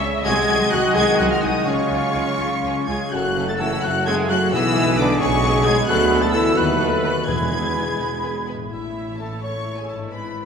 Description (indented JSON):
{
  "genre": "classical, dramatic, fast romantic movement for symphony orchestra",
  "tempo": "80-89 BPM (dotted quarters)",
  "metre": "6/8",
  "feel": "rubato",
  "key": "A major from 5.9 s",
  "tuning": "A4 = 442 Hz",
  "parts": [
    { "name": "mellow clarinet", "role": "second line", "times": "0.0-8.5 s", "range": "C#4 to A4", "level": "-27 LUFS", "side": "left 1 dB", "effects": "none" },
    { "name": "warm oboe", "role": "second line", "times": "0.0-8.4 s", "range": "C#5 to A5", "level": "-28 LUFS", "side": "right 1 dB", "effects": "none" },
    { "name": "clear symphonic viola section", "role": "accompaniment", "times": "0.0-10.5 s", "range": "A3 to E5", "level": "-28 LUFS", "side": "equal", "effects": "none" },
    { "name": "bright trombone section", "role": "sustained chords", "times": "0.0-8.4 s", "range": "B2 to B3", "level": "-29 LUFS", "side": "right 3 dB", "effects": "none" },
    { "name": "concert harp", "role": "arpeggios", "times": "0.0-10.5 s", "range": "F#2 to D#5", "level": "-30 LUFS", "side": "left 7 dB", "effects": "none" },
    { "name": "rich symphonic double bass section", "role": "bass", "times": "0.0-10.5 s", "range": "F#1 to E2", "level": "-29 LUFS", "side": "right 3 dB", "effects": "none" },
    { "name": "warm tuba", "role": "bass", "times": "0.0-8.6 s", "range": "E1 to D#2", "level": "-29 LUFS", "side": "right 3 dB", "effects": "none" },
    { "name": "rich symphonic violin section", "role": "melody", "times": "0.2-10.5 s", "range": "C#5 to A6", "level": "-26 LUFS", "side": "left 3 dB", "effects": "none" },
    { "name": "clear symphonic violin section", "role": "second line", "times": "0.2-10.5 s", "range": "B3 to C#6", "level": "-32 LUFS", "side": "left 3 dB", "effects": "none" },
    { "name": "mellow hollow silver concert flute", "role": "second line", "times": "0.3-8.4 s", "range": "E#5 to B5", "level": "-30 LUFS", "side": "equal", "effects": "none" },
    { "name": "dark bassoon", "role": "accompaniment", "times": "0.3-8.5 s", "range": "G#3 to B3", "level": "-30 LUFS", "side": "right 1 dB", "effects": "none" },
    { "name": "dark French horn section", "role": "sustained chords", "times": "0.3-8.4 s", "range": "C#4 to A4", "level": "-27 LUFS", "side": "left 3 dB", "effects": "none" },
    { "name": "mellow trumpet section", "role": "stabs", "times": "0.3-10.5 s", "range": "E4 to C#5", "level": "-31 LUFS", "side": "equal", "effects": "none" },
    { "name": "rich symphonic cello section", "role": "bass", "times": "0.3-10.5 s", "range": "G#2 to A3", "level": "-28 LUFS", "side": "right 3 dB", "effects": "none" },
    { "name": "timpani", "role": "percussion", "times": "7.3-9.4 s", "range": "E2 to A2", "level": "-33 LUFS", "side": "equal", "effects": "none" }
  ],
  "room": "wet concert hall reverb, RT60 2.6 s",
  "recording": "none",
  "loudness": "-17 LUFS",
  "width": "side -6 dB against mid",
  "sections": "0.0-8.7 A section; 8.7-10.5 B section",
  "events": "none",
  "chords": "0.3 G#7/B#; 1.7 C#; 3.1 F#m; 4.5 G#dim/B; 5.9 Bm7/D; 6.6 B7/D#; 7.3 E; 8.7 A",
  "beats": "| 0.25 0.95 | 1.66 2.39 | 3.13 3.84 | 4.53 5.21 | 5.89 6.57 | 7.29 8.00 | 8.71 9.42 | 10.11"
}